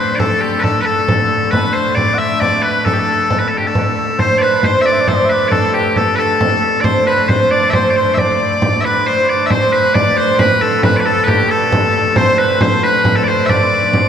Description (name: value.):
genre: medieval dance.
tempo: 90 BPM (dotted quarters).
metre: 6/8.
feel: straight.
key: unclear.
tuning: A4 = 439 Hz.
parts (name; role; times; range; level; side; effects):
loud bright bagpipes; melody; 0.0-14.1 s; G4 to E5; -15 LUFS; left 1 dB; none.
bright shawm; second line; 0.0-13.9 s; G4 to F#5; -21 LUFS; left 4 dB; none.
rich hurdy-gurdy; drone; 0.0-14.1 s; D3 to A3; -23 LUFS; equal; none.
frame drum; percussion; 0.2-14.1 s; none; -18 LUFS; right 1 dB; none.
concert harp; second line; 4.2-14.1 s; G4 to D5; -17 LUFS; right 2 dB; none.
room: wet cathedral reverb, RT60 4.4 s.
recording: recorded in a church or concert hall.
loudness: -11 LUFS.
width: side -8 dB against mid.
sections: 0.0-9.5 A section; 9.5-14.1 B section.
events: none.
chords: none.